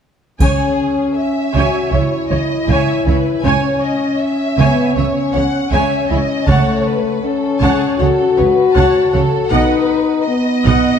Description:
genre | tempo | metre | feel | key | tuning
cinematic, epic orchestral film score | 79 BPM | 4/4 | straight | C# minor | A4 = 441 Hz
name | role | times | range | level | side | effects
warm symphonic violin section | melody | 0.4-11.0 s | C#5 to A5 | -28 LUFS | left 3 dB | none
warm symphonic violin section | second line | 0.4-11.0 s | G#4 to F#5 | -22 LUFS | left 2 dB | none
rich symphonic viola section | accompaniment | 0.4-11.0 s | E4 to G#5 | -22 LUFS | equal | none
clear French horn section | sustained chords | 0.4-11.0 s | A3 to F#4 | -16 LUFS | left 3 dB | none
rich symphonic double bass section | bass | 0.4-10.7 s | B1 to C#2 | -19 LUFS | right 4 dB | none
warm symphonic cello section | bass | 0.4-10.7 s | B2 to C#3 | -21 LUFS | right 3 dB | none
taiko ensemble | drums | 0.4-1.9, 6.5-8.0 s | none | -18 LUFS | equal | none
triangle | percussion | 0.4-1.9 s | none | -38 LUFS | right 1 dB | none
room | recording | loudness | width
wet concert hall reverb, RT60 2.3 s | dark, warm production | -13 LUFS | side -7 dB against mid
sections
0.4-11.0 A section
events
none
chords
0.4 C#m; 6.5 F#m; 9.5 B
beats
| 0.41 1.17 1.93 2.69 | 3.45 4.21 4.96 5.72 | 6.48 7.24 8.00 8.76 | 9.52 10.28

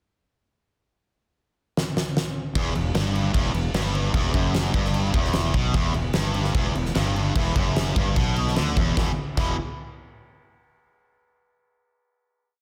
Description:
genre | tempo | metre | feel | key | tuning
hard rock | 150 BPM | 4/4 | straight | E minor | A4 = 440 Hz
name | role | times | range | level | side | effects
huge arena drum kit | drums | 1.8-9.5 s | crash cymbal, kick drum, snare drum | -27 LUFS | equal | none
distorted electric guitar | riff | 2.6-9.5 s | E2 to E3 | -28 LUFS | equal | overdrive
fuzz fingered electric bass | bass | 2.6-9.6 s | E1 to D2 | -29 LUFS | equal | overdrive
room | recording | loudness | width
light reverb | dense, heavily limited modern master | -24 LUFS | mono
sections
1.0-2.6 pickup bar; 2.6-9.0 riff; 9.0-10.6 final chord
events
drum fill 1.8-2.6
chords
1.0 N.C.; 2.6 Em; 9.0 E5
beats
| 0.98 1.37 1.77 2.16 | 2.56 2.96 3.35 3.75 | 4.15 4.55 4.95 5.34 | 5.75 6.15 6.55 6.95 | 7.36 7.76 8.17 8.57 | 8.97 9.38

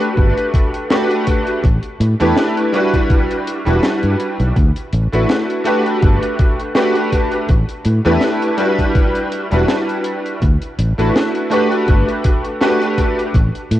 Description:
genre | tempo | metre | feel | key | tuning
vaporwave | 82 BPM | 4/4 | swing 55% on 16ths | unclear | A4 = 440 Hz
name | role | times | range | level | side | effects
bright electric grand piano | accompaniment | 0.0-13.3 s | G3 to B4 | -16 LUFS | equal | ensemble chorus, cassette tape, tape echo
deep reggae drum kit | drums | 0.0-13.8 s | hi-hat, snare drum | -22 LUFS | left 1 dB | studio reverb, cassette tape
fingered electric bass | bass | 0.2-13.8 s | E1 to A2 | -15 LUFS | equal | tube saturation
electronic kick drum | drums | 0.2-13.5 s | none | -15 LUFS | equal | studio reverb, cassette tape
room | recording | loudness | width
studio ambience | home recording on cassette | -13 LUFS | side -14 dB against mid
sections
0.0-13.8 A section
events
none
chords
0.0 Gmaj9; 1.6 A9sus4; 3.1 Em9; 4.6 D69; 5.7 Gmaj9; 7.5 A9sus4; 9.0 Em9; 10.4 D69; 11.5 Gmaj9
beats
0.17 0.91 | 1.64 2.37 3.10 3.83 | 4.56 5.30 6.03 6.76 | 7.49 8.22 8.95 9.69 | 10.42 11.15 11.88 12.61 | 13.34

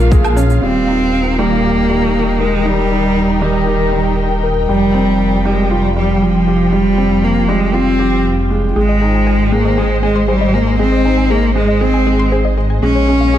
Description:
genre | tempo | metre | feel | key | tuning
piano and strings electronica | 118 BPM | 4/4 | straight | unclear | A4 = 440 Hz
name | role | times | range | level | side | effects
bright cello | melody | 0.0-13.4 s | Eb3 to Db4 | -16 LUFS | equal | none
dark studio string section | sustained chords | 0.0-13.4 s | Eb3 to G5 | -21 LUFS | left 1 dB | sidechain pumping
felt-muted upright piano | riff | 0.0-13.4 s | G3 to C5 | -18 LUFS | right 3 dB | digital delay
dark detuned saw bass | bass | 0.0-13.4 s | Eb1 to Bb1 | -17 LUFS | equal | sidechain pumping
shaker and woodblock | drums | 0.1-0.6 s | none | -23 LUFS | right 2 dB | overdrive
analog pluck | arpeggios | 8.8-13.4 s | Ab4 to C6 | -23 LUFS | left 3 dB | chorus, phaser, sidechain pumping, digital delay
room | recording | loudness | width
light reverb, studio reverb | dark, warm production | -11 LUFS | side -11 dB against mid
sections
0.6-13.4 A section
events
none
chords
0.0 Bbm7; 0.6 Eb; 4.7 Fsus2; 8.8 Ab; 12.8 Bbm7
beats
0.12 | 0.62 1.13 1.64 2.15 | 2.66 3.17 3.68 4.18 | 4.69 5.20 5.71 6.22 | 6.73 7.24 7.74 8.25 | 8.76 9.27 9.78 10.29 | 10.79 11.30 11.81 12.32 | 12.83 13.34

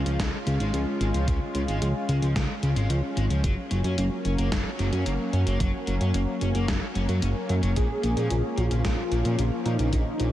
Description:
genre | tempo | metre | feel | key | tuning
synthwave | 111 BPM | 4/4 | straight | unclear | A4 = 440 Hz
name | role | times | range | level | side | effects
lush unison pad | sustained chords | 0.0-10.3 s | F3 to F4 | -31 LUFS | left 1 dB | chorus, vintage 12-bit sampler grit, sidechain pumping
fat analog bass | bass | 0.0-10.3 s | Gb1 to Bb2 | -25 LUFS | equal | none
overdriven semi-hollow guitar | riff | 0.1-10.3 s | Bb2 to Db4 | -35 LUFS | left 2 dB | lush chorus, analog delay
gated 80s digital drum machine | drums | 0.1-10.3 s | hi-hat, snare drum | -35 LUFS | left 1 dB | gated reverb, gated reverb snare, studio reverb
electronic kick drum | drums | 0.2-10.0 s | none | -28 LUFS | equal | studio reverb
wide unison lead | melody | 7.8-10.3 s | Eb4 to Ab4 | -30 LUFS | left 1 dB | analog delay
room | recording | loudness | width
light reverb | none | -23 LUFS | side -13 dB against mid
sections
0.0-10.3 A section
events
none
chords
0.0 Db; 3.4 Gb; 7.8 Bbm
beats
0.20 0.74 | 1.28 1.82 2.36 2.90 | 3.44 3.98 4.52 5.06 | 5.60 6.14 6.68 7.22 | 7.76 8.30 8.85 9.39 | 9.93

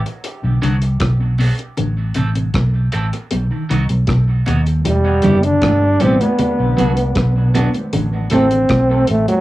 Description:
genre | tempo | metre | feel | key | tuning
dub reggae | 78 BPM | 4/4 | straight | unclear | A4 = 439 Hz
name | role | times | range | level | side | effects
vintage muted fingered electric bass | bass | 0.0-9.3 s | E1 to D#2 | -16 LUFS | equal | none
deep reggae drum kit | drums | 0.1-9.4 s | hi-hat, kick drum, rim click | -23 LUFS | equal | cassette tape
congas | percussion | 0.1-9.4 s | none | -24 LUFS | right 2 dB | high-pass filter on perc, dub echo
mellow electric guitar | arpeggios | 0.4-8.1 s | B2 to E3 | -24 LUFS | left 2 dB | tremolo, cassette tape, dub echo
electric guitar at the edge of break-up | accompaniment | 0.6-8.5 s | F#3 to A4 | -22 LUFS | right 2 dB | high-pass filter, cassette tape, dub echo
breathy trombone | melody | 4.9-9.4 s | F#3 to D4 | -16 LUFS | equal | cassette tape, dub echo
room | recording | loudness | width
light reverb | home recording on cassette, small room ambience | -13 LUFS | side -16 dB against mid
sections
0.0-9.4 A section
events
break 0.0-4.9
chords
0.2 Bm; 1.8 Am; 3.3 B; 4.9 Em; 6.4 Bm; 7.9 Am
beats
0.24 1.01 | 1.78 2.55 3.32 4.08 | 4.85 5.62 6.39 7.16 | 7.93 8.70

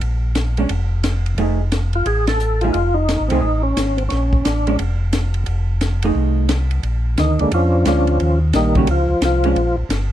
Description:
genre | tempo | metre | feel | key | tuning
soul jazz organ trio | 176 BPM | 4/4 | swing 64% on 8ths | unclear | A4 = 438 Hz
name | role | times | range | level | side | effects
mellow tonewheel organ | bass | 0.0-10.1 s | F1 to F2 | -18 LUFS | equal | slow rotary speaker
compact cocktail drum kit | drums | 0.0-10.0 s | hi-hat, kick drum, ride cymbal, snare drum | -25 LUFS | left 1 dB | none
vintage hollow-body jazz guitar | accompaniment | 0.6-9.6 s | Eb3 to G#4 | -22 LUFS | right 4 dB | none
percussive tonewheel organ | melody | 2.0-4.8, 7.2-9.8 s | Db3 to A4 | -18 LUFS | equal | slow rotary speaker, overdrive, chorus vibrato
room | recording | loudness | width
light reverb | dark, warm production | -15 LUFS | side -12 dB against mid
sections
0.0-6.8 A section; 6.8-10.1 B section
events
band accent 2.2; tonewheel organ solo 6.8-10.1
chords
0.0 Bb5; 1.4 F7#9; 4.1 Bb(#9); 5.5 F7#9; 6.8 Bb7#9; 8.2 Eb7; 9.6 Bb5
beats
| 0.01 0.36 0.70 1.04 | 1.38 1.72 2.06 2.40 | 2.74 3.08 3.42 3.77 | 4.11 4.45 4.79 5.13 | 5.47 5.81 6.15 6.49 | 6.83 7.18 7.52 7.86 | 8.20 8.54 8.88 9.22 | 9.56 9.90

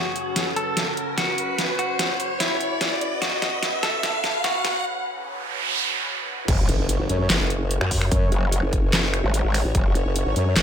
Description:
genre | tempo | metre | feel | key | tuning
heavy wobble dubstep | 147 BPM | 4/4 | half-time | F# minor | A4 = 440 Hz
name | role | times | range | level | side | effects
clean electric guitar | melody | 0.0-4.8 s | E4 to A4 | -27 LUFS | equal | tape echo
lush unison pad | sustained chords | 0.0-10.6 s | F#2 to C#5 | -32 LUFS | equal | chorus, phaser, sidechain pumping
riser, noise sweep and impact | sound effects | 0.0-8.1 s | none | -27 LUFS | right 1 dB | none
dubstep drum kit | drums | 0.2-10.6 s | crash cymbal, finger snaps, handclaps, hi-hat, snare drum | -24 LUFS | equal | overdrive
growl bass | bass | 6.5-9.9 s | F#1 to F#2 | -22 LUFS | equal | chorus, overdrive
electronic kick drum | drums | 6.5-9.8 s | none | -22 LUFS | equal | none
formant-sweep wobble bass | bass | 6.7-10.6 s | F#1 to F#2 | -23 LUFS | equal | chorus, overdrive
room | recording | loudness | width
light reverb, digital ambience | high-pass filter | -20 LUFS | side -8 dB against mid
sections
0.0-6.5 A section; 6.5-10.6 B section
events
build-up 0.0-6.5; drum fill 0.0-4.8; riser 0.0-4.8; break 4.8-6.5; noise sweep 4.8-6.5; drop 6.5-10.6; impact 6.5-8.1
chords
0.0 F#5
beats
0.36 0.77 1.18 | 1.58 1.99 2.40 2.81 | 3.22 3.63 4.03 4.44 | 4.85 5.26 5.67 6.08 | 6.48 6.89 7.30 7.71 | 8.12 8.52 8.93 9.34 | 9.75 10.16 10.56

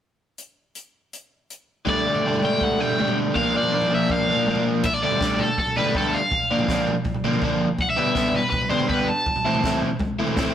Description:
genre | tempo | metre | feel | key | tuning
indie rock | 162 BPM | 4/4 | straight | unclear | A4 = 440 Hz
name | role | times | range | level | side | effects
compact cocktail drum kit | drums | 0.4-10.5 s | crash cymbal, hi-hat, kick drum, snare drum, toms | -27 LUFS | right 1 dB | none
cranked stack guitar | melody | 1.9-9.8 s | A4 to A5 | -24 LUFS | equal | overdrive
overdriven electric guitar | riff | 1.9-10.5 s | Bb2 to E4 | -22 LUFS | equal | spring reverb
room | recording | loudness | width
wet stone room reverb, RT60 1.2 s | rough rehearsal-room recording, tube saturation | -19 LUFS | side -10 dB against mid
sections
0.4-1.9 A section; 1.9-4.8 B section; 4.8-10.5 C section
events
none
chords
0.4 N.C.; 1.9 Dsus4; 3.4 Bb; 4.8 Dsus4; 6.3 Bb; 7.8 G6; 9.1 Am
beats
| 0.40 0.77 1.14 1.51 | 1.88 2.25 2.62 2.99 | 3.36 3.73 4.10 4.47 | 4.84 5.21 5.58 5.95 | 6.32 6.69 7.06 7.43 | 7.80 8.17 8.54 8.91 | 9.28 9.64 10.01 10.38

